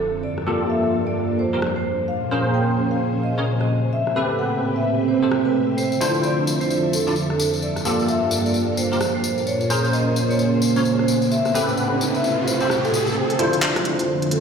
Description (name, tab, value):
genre	UK garage, two-step garage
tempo	130 BPM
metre	4/4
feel	swing 61% on 16ths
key	D minor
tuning	A4 = 442 Hz
part	vibraphone with medium mallets	melody	0.0-14.4 s	A4 to G5	-25 LUFS	equal	ping-pong delay
part	soft string machine	sustained chords	0.0-14.4 s	G2 to E5	-25 LUFS	equal	ensemble chorus
part	sub drop and riser	sound effects	0.0-0.2, 10.7-14.4 s	none	-27 LUFS	right 2 dB	none
part	deep dark ambient pad	texture	0.0-14.4 s	F3 to Ab5	-25 LUFS	right 3 dB	chorus, built-in reverb
part	garage drum kit	drums	0.4-14.4 s	handclaps, hi-hat, rim click	-27 LUFS	left 1 dB	none
part	bell-like tine electric piano	stabs	0.5-14.4 s	Bb3 to D5	-24 LUFS	equal	ensemble chorus, low-pass filter, dub echo
part	tambourine	percussion	5.8-13.1 s	none	-29 LUFS	left 4 dB	none
room	wet lush hall reverb, RT60 2.2 s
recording	played on a big sound system in a bare room, stone room reverb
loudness	-18 LUFS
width	side -6 dB against mid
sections	0.0-13.2 A section; 13.2-14.4 B section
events	impact 0.0; riser 10.7-13.2, 13.2-14.4; build-up 13.2-14.4; filter sweep on tine electric piano 13.2-14.4; filter sweep on string machine 13.2-14.4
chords	0.2 Gm9; 2.1 Bbm9; 3.9 Am9; 5.8 Dm9; 7.6 Gm9; 9.5 Bbm9; 11.3 Am9; 13.2 Dm9